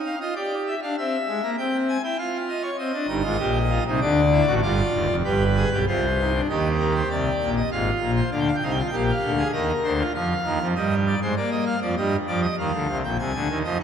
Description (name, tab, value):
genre	classical, baroque-style 3-part fugue for pipe organ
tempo	98 BPM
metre	3/4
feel	straight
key	unclear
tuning	A4 = 443 Hz
part	pipe organ, full organ	solo	0.0-13.8 s	Eb1 to Ab5	-21 LUFS	equal	none
room	wet church reverb, RT60 2.9 s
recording	none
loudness	-21 LUFS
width	side -8 dB against mid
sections	0.0-6.5 A section; 6.5-13.8 B section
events	none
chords	0.4 G5; 1.0 C; 2.2 Dbadd9/F; 2.8 Cm; 4.0 D; 4.6 G; 5.9 Cm; 6.5 Cm/Eb; 7.7 Fm/Ab; 8.3 Bb7; 9.5 Eb5; 10.1 Fm; 11.4 Bb; 12.0 Eb; 13.2 Ab/C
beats	0.36 | 0.97 1.58 2.19 | 2.79 3.40 4.02 | 4.63 5.24 5.87 | 6.49 7.11 7.71 | 8.32 8.93 9.54 | 10.15 10.76 11.36 | 11.97 12.58 13.19 | 13.80